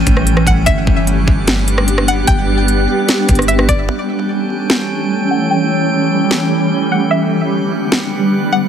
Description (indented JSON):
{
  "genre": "hip hop, atmospheric cloud-rap",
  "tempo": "149 BPM",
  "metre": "4/4",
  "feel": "half-time",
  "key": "unclear",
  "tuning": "A4 = 440 Hz",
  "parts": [
    { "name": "granular cloud pad", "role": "sustained chords", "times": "0.0-8.7 s", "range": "D3 to G4", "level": "-15 LUFS", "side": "right 1 dB", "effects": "built-in reverb, low-pass filter" },
    { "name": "soft 808-style bass", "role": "bass", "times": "0.0-3.9 s", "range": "G1 to A1", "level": "-16 LUFS", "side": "equal", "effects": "none" },
    { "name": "drifting glass-harmonics texture", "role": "texture", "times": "0.0-8.7 s", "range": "B3 to F#6", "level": "-22 LUFS", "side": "equal", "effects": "chorus, built-in reverb" },
    { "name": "trap drum kit", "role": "drums", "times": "0.1-8.0 s", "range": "hi-hat, kick drum, rim click, snare drum", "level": "-15 LUFS", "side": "equal", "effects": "overdrive" },
    { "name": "string-like resonator pluck", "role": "melody", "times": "0.5-8.7 s", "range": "D5 to G5", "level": "-20 LUFS", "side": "left 1 dB", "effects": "chorus, phaser, low-pass filter, digital delay" }
  ],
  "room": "moderate lush hall reverb, RT60 1.8 s, digital ambience",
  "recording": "heavily compressed radio sound",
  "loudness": "-12 LUFS",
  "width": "side -8 dB against mid",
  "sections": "0.0-3.9 A section; 3.9-8.7 B section",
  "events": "none",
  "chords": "0.0 A7; 0.7 Gmaj7; 3.9 A7; 7.1 Gmaj7"
}